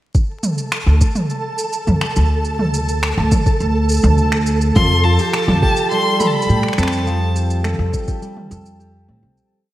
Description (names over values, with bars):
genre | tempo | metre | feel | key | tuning
folktronica | 104 BPM | 4/4 | straight | D minor | A4 = 441 Hz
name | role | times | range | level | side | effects
electronic kick drum | drums | 0.1-8.2 s | none | -16 LUFS | equal | overdrive, small room ambience
organic electronic drum kit | drums | 0.1-9.5 s | finger snaps, shaker, toms | -22 LUFS | right 1 dB | overdrive, small room ambience
flickering grainy texture | texture | 0.5-9.4 s | A4 to A5 | -24 LUFS | right 2 dB | built-in reverb
upright bass | bass | 0.9-9.4 s | C2 to A2 | -16 LUFS | equal | tube saturation
rich violin | melody | 4.8-7.6 s | A5 to C6 | -20 LUFS | left 1 dB | analog delay
fingerpicked plugged-in steel-string acoustic guitar | arpeggios | 4.8-9.7 s | F3 to A4 | -21 LUFS | right 1 dB | none
room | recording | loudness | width
moderate lush hall reverb, RT60 1.7 s, small room ambience | dreamy mix soaked in reverb, vinyl crackle | -14 LUFS | side -14 dB against mid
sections
0.1-9.4 groove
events
fade-out 6.3-9.4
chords
0.1 D5; 4.8 Fadd9